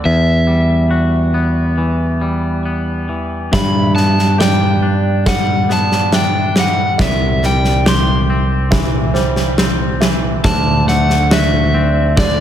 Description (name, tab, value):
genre	post-rock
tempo	69 BPM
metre	4/4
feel	straight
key	G major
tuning	A4 = 439 Hz
part	overdriven semi-hollow guitar	melody	0.0-12.4 s	D5 to C6	-18 LUFS	left 1 dB	analog delay
part	twangy electric guitar	arpeggios	0.0-12.4 s	E2 to G4	-21 LUFS	left 3 dB	analog delay
part	modern bright picked electric bass	bass	0.1-12.4 s	C2 to G2	-16 LUFS	equal	none
part	felt-muted upright piano	arpeggios	3.5-12.4 s	C5 to E5	-25 LUFS	right 7 dB	analog delay
part	huge arena drum kit	drums	3.5-12.4 s	kick drum, snare drum	-16 LUFS	equal	none
room	light reverb, studio reverb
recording	none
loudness	-12 LUFS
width	side -10 dB against mid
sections	0.0-12.4 A section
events	none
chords	0.1 Emadd9; 3.5 G; 7.0 C; 10.5 D7